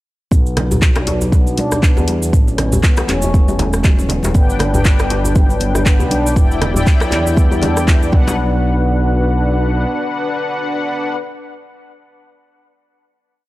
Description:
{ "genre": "afro house", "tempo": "119 BPM", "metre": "4/4", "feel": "swing 57% on 16ths", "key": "B minor", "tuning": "A4 = 439 Hz", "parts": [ { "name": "dark analog pad", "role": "sustained chords", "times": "0.9-11.2 s", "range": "E3 to F#5", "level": "-26 LUFS", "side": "right 1 dB", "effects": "chorus, sidechain pumping" }, { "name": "handpan", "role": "arpeggios", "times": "0.3-8.6 s", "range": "F#3 to D4", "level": "-24 LUFS", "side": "equal", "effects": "sidechain pumping, analog delay" }, { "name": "smooth gliding synth bass", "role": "bass", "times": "0.3-9.9 s", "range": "E1 to E2", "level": "-18 LUFS", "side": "equal", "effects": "sidechain pumping" }, { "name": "afro-pop drum kit", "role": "drums", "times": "0.3-8.0 s", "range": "handclaps, hi-hat, rim click, toms", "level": "-22 LUFS", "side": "equal", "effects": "none" }, { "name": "electronic kick drum", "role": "drums", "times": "0.3-8.2 s", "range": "none", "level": "-12 LUFS", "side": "equal", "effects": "none" }, { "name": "cabasa", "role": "percussion", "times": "0.3-8.4 s", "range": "none", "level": "-29 LUFS", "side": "right 3 dB", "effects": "none" }, { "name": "congas", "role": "percussion", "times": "0.3-8.4 s", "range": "none", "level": "-24 LUFS", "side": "right 1 dB", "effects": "none" }, { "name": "djembe", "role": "percussion", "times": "0.7-8.4 s", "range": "none", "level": "-23 LUFS", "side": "left 2 dB", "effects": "none" }, { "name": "mellow synth brass", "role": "stabs", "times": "4.3-11.2 s", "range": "D4 to G5", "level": "-20 LUFS", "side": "left 2 dB", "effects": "chorus, sidechain pumping, analog delay" } ], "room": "small room ambience", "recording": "dry, gritty hardware recording", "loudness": "-12 LUFS", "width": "side -17 dB against mid", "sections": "0.3-8.4 drop; 8.4-12.4 final hit", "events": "drop 0.3-8.4", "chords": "0.3 Bm; 2.3 A; 4.3 G; 6.4 Em7; 8.1 Bm" }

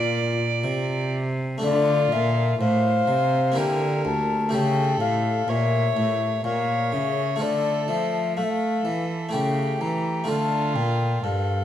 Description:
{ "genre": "classical, baroque-style sonata movement with continuo", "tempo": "62 BPM", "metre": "3/4", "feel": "straight", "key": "D minor", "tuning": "A4 = 441 Hz", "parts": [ { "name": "baroque flute", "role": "melody", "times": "0.0-11.6 s", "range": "F4 to Bb5", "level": "-26 LUFS", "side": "left 6 dB", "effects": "none" }, { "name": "warm violin", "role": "second line", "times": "0.0-11.6 s", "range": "F4 to D5", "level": "-29 LUFS", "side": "right 5 dB", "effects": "none" }, { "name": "harpsichord", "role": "accompaniment", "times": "0.0-11.6 s", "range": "D2 to A4", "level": "-28 LUFS", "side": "left 1 dB", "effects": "none" }, { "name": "rich cello", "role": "bass", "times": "0.0-11.6 s", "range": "D2 to A3", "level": "-26 LUFS", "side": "right 1 dB", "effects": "none" } ], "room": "moderate recital hall reverb, RT60 1.6 s", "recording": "none", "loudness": "-21 LUFS", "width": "side -10 dB against mid", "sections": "0.0-1.6 A section; 1.6-11.6 B section", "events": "none", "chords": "0.0 Dm; 3.6 Em7b5/D; 4.5 A7; 7.4 Dm; 9.3 A7/C#; 10.3 Dm" }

